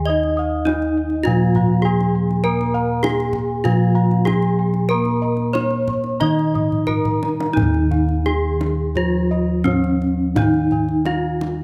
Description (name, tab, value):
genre	Javanese gamelan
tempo	86-102 BPM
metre	4/4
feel	straight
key	Eb slendro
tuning	A4 = 440 Hz
part	gamelan-type bronze metallophone	melody	0.0-11.6 s	Db4-45c to Eb5	-24 LUFS	equal	none
part	gamelan-type bronze metallophone	accompaniment	0.0-11.6 s	Eb3 to Eb4	-24 LUFS	equal	none
part	gamelan-type bronze metallophone	arpeggios	0.0-7.6 s	Eb5 to Eb6	-32 LUFS	equal	none
part	gamelan-type bossed gongs	bass	0.0-11.6 s	Eb2 to Eb5	-24 LUFS	equal	none
part	gamelan-type bossed gongs	arpeggios	0.1-11.5 s	Db5-45c to Db6-45c	-32 LUFS	equal	none
part	kendang	percussion	0.2-11.6 s	none	-28 LUFS	equal	none
room	light reverb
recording	close, detailed microphones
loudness	-19 LUFS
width	mono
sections	0.0-7.6 A section; 7.6-11.6 B section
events	drum fill 6.7-7.6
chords	none